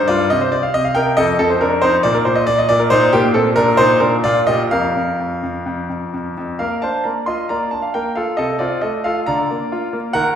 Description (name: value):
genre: classical-period piano sonatina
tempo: 125-141 BPM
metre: 4/4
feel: rubato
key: Bb major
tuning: A4 = 439 Hz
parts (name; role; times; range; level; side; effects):
- bright grand piano; solo; 0.0-10.4 s; F2 to C6; -14 LUFS; equal; none
room: wet recital hall reverb, RT60 1.3 s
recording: recorded in a church or concert hall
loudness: -15 LUFS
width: side -8 dB against mid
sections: 0.0-6.6 A section; 6.6-10.4 B section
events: none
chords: 0.3 Cm11; 1.2 F7; 2.1 N.C.; 2.9 Bbmaj13; 3.8 Bb; 4.7 Bb5/F; 6.6 Bb; 8.4 F/C; 9.3 Bb/D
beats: 0.30 0.74 | 1.18 1.62 2.05 2.48 | 2.92 3.35 3.79 4.25 | 4.72 5.19 5.66 6.13 | 6.60 7.05 7.50 7.94 | 8.38 8.82 9.28 9.71 | 10.15